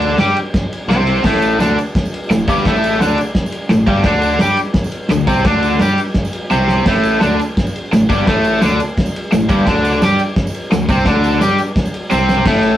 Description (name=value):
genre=garage rock duo or trio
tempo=171 BPM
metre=4/4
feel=straight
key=unclear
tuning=A4 = 439 Hz
part: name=overdriven electric guitar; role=riff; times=0.0-12.8 s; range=G2 to G4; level=-14 LUFS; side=equal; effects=none
part: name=fuzz fingered electric bass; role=bass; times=0.0-12.8 s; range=G1 to G2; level=-19 LUFS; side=equal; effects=overdrive
part: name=cloth-damped thuddy drum kit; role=drums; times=0.0-12.7 s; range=crash cymbal, kick drum, ride cymbal, snare drum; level=-17 LUFS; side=equal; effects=none
part: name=tambourine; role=percussion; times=1.2-12.4 s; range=none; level=-40 LUFS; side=right 4 dB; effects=none
room=wet small room reverb, RT60 0.5 s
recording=rough rehearsal-room recording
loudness=-12 LUFS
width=side -12 dB against mid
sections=0.0-12.5 A section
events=drum fill 6.5-6.9, 12.1-12.5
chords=0.0 Csus2; 1.2 Gsus2; 4.1 Csus2; 6.9 Gsus2; 9.7 Csus2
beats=0.19 0.54 0.90 | 1.25 1.60 1.95 2.30 | 2.65 3.00 3.35 3.71 | 4.06 4.41 4.76 5.11 | 5.46 5.81 6.16 6.51 | 6.87 7.22 7.57 7.92 | 8.27 8.62 8.97 9.32 | 9.67 10.02 10.37 10.72 | 11.07 11.42 11.76 12.11 | 12.46